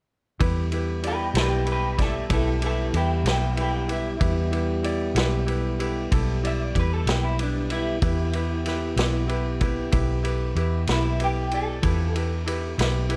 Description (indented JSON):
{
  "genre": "slow blues",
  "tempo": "63 BPM (dotted quarters)",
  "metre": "12/8",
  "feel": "straight",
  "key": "E minor",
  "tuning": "A4 = 440 Hz",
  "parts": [
    { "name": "bright grand piano", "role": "accompaniment", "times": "0.4-13.2 s", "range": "E4 to D5", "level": "-34 LUFS", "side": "equal", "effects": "none" },
    { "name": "tonewheel organ", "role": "sustained chords", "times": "0.4-13.2 s", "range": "G3 to G#5", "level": "-35 LUFS", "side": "equal", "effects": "slow rotary speaker" },
    { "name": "vintage muted fingered electric bass", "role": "bass", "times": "0.4-13.2 s", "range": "B1 to E2", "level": "-28 LUFS", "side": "equal", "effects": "none" },
    { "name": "vintage drum kit", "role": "drums", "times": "0.4-13.2 s", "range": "kick drum, ride cymbal, snare drum", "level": "-31 LUFS", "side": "equal", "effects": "none" },
    { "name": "electric guitar through a small old amp", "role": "melody", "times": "1.1-13.2 s", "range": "D4 to E5", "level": "-32 LUFS", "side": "equal", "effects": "ensemble chorus, slapback echo" }
  ],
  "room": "little or no reverb",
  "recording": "dark, warm production",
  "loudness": "-24 LUFS",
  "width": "mono",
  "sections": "0.4-13.2 A section",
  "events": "clean electric guitar solo 0.4-13.2",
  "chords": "0.4 Em",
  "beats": "| 0.40 1.35 2.30 3.26 | 4.21 5.16 6.11 7.07 | 8.02 8.97 9.93 10.88 | 11.83 12.78"
}